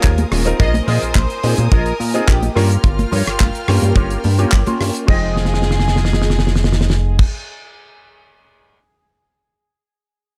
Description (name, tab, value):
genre	nu-disco, nu disco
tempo	107 BPM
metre	4/4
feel	straight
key	F minor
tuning	A4 = 441 Hz
part	warm symphonic violin section	melody	0.0-7.3 s	F4 to Eb5	-29 LUFS	equal	analog delay
part	rich studio string section	sustained chords	0.0-7.3 s	F4 to F6	-32 LUFS	equal	sidechain pumping
part	electric guitar with an envelope filter	riff	0.0-7.3 s	F4 to F5	-28 LUFS	equal	ensemble chorus, slapback echo
part	chorused synth bass	bass	0.0-7.3 s	Eb1 to Bb2	-19 LUFS	equal	none
part	damped 70s drum kit	drums	0.0-8.8 s	crash cymbal, kick drum, snare drum	-18 LUFS	equal	small room ambience
part	damped 70s drum kit	drums	0.0-5.1 s	handclaps, hi-hat, rim click	-26 LUFS	equal	small room ambience
part	congas	percussion	0.2-4.8 s	none	-27 LUFS	equal	none
part	clear grand piano	accompaniment	0.3-7.3 s	Ab3 to C6	-26 LUFS	equal	sidechain pumping, slapback echo
room	small room ambience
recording	none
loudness	-16 LUFS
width	mono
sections	0.0-5.1 A section; 5.1-7.3 B section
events	drop 0.0-5.1; drum fill 5.4-7.2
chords	0.0 Eb9sus4; 0.6 Bb7sus4; 2.6 Gm7b5; 5.1 Fm7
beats	0.04 | 0.60 1.16 1.72 2.28 | 2.84 3.40 3.96 4.52 | 5.08 5.64 6.21 6.77